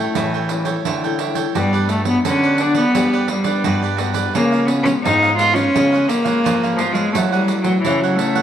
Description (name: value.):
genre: samba and choro.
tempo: 86 BPM.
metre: 4/4.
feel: straight.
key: unclear.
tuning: A4 = 442 Hz.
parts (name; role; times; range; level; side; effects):
rich cello; melody; 0.0-8.4 s; E3 to E#4; -17 LUFS; equal; none.
cavaquinho; accompaniment; 0.0-8.4 s; E4 to G5; -25 LUFS; right 9 dB; none.
nylon-string guitar; accompaniment; 0.0-8.4 s; G2 to E#4; -26 LUFS; left 10 dB; none.
nylon-string guitar; bass; 0.0-8.4 s; G2 to G3; -23 LUFS; equal; none.
pandeiro; percussion; 0.2-8.4 s; none; -25 LUFS; right 10 dB; none.
room: moderate plate reverb, RT60 2.7 s.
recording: 1960s-style stereo with parts hard left and right.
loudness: -15 LUFS.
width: side -10 dB against mid.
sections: 0.0-1.6 A section; 1.6-8.4 B section.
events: none.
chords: 0.0 A7; 1.6 Gmaj7; 4.4 C#7; 7.2 F#m7.